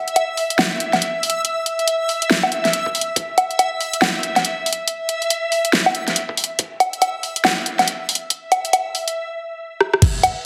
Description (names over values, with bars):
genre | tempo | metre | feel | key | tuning
deep dubstep | 140 BPM | 4/4 | swing 61% on 16ths, half-time | unclear | A4 = 439 Hz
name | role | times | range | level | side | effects
backwards swelling texture | texture | 0.0-10.5 s | E5 | -26 LUFS | equal | built-in reverb
dubstep drum kit | drums | 0.1-10.3 s | crash cymbal, hi-hat, rim click, snare drum, woodblock | -20 LUFS | equal | overdrive, high-pass filter on hats, high-pass filter on perc, high-pass filter on snare, high-pass filter on cymbals
electronic kick drum | drums | 2.9-3.3, 6.3-6.7, 10.0-10.1 s | none | -20 LUFS | equal | high-pass filter on kick, high-pass filter on room
room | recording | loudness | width
wet digital room reverb, RT60 1.2 s | heavily compressed radio sound, multiband compression | -19 LUFS | mono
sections
0.0-10.0 A section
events
build-up 0.0-10.0; drum fill 9.8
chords
none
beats
0.16 0.59 1.02 | 1.45 1.88 2.31 2.73 | 3.16 3.59 4.02 4.45 | 4.88 5.30 5.73 6.16 | 6.59 7.02 7.45 7.88 | 8.30 8.73 9.16 9.59 | 10.02 10.45